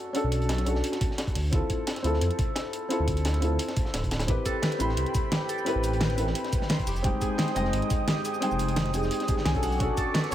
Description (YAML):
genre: liquid drum and bass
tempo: 174 BPM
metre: 4/4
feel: straight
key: unclear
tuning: A4 = 440 Hz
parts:
  - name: felt-muted upright piano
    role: accompaniment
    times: 0.0-10.3 s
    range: Ab3 to B5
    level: -30 LUFS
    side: left 1 dB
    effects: tape echo
  - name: pop drum kit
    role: drums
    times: 0.1-10.3 s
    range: cabasa, hi-hat, snare drum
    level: -31 LUFS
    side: equal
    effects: none
  - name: swelling detuned saw bass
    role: bass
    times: 0.2-10.3 s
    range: D1 to F2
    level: -28 LUFS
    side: equal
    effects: tube saturation
  - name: crunchy breakbeat drum kit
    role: drums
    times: 0.2-10.3 s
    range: hi-hat, snare drum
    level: -36 LUFS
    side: equal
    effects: high-pass filter on hats, high-pass filter on snare, high-pass filter on room
  - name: electronic kick drum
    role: drums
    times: 1.0-10.0 s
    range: none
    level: -29 LUFS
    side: equal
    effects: overdrive
  - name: airy breathy pad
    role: sustained chords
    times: 4.5-10.3 s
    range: G5 to Eb6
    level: -35 LUFS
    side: right 2 dB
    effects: chorus
  - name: Celtic harp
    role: arpeggios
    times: 4.3-10.3 s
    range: F#4 to Ab5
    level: -34 LUFS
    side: equal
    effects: dub echo
room: light reverb, studio reverb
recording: none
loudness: -24 LUFS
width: side -12 dB against mid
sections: 0.0-10.3 A section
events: none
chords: 0.0 Bm9; 1.4 Dm9; 4.3 Am9; 6.9 Fm9; 9.6 Bm9